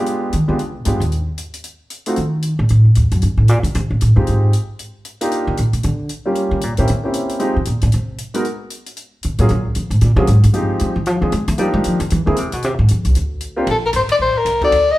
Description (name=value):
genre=jazz, small-group swing and bop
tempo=229 BPM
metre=4/4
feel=swing 61% on 8ths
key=Eb major from 5.3 s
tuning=A4 = 440 Hz
part: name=warm concert grand piano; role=accompaniment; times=0.0-14.7 s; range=F3 to Bb4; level=-20 LUFS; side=equal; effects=none
part: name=compact cocktail drum kit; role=drums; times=0.1-14.8 s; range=hi-hat, kick drum, ride cymbal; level=-31 LUFS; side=left 1 dB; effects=none
part: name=upright bass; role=bass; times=0.3-15.0 s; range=G1 to A3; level=-15 LUFS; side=equal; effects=none
part: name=breathy soprano saxophone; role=melody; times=13.7-15.0 s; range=A4 to Eb5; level=-14 LUFS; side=left 3 dB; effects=none
room=moderate large studio reverb, RT60 0.9 s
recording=band playing live in one room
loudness=-14 LUFS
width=side -17 dB against mid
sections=0.0-5.3 A section; 5.3-13.7 A section; 13.7-15.0 B section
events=upright bass solo 0.0-13.7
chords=0.1 G7b9; 1.1 Cm; 2.2 N.C.; 3.2 Bb5; 4.3 Fm7; 4.8 Bb6; 5.3 Ebmaj7; 6.4 Gm7b5; 6.9 C7b9; 7.4 Fm9; 8.4 N.C.; 9.0 Db7b13; 9.5 Gbmaj7 (rootless); 10.5 Fm9; 11.1 Fm69; 11.6 Ebmaj9; 12.1 C7b13; 12.6 Fm; 13.1 Bb69; 13.7 Gmadd11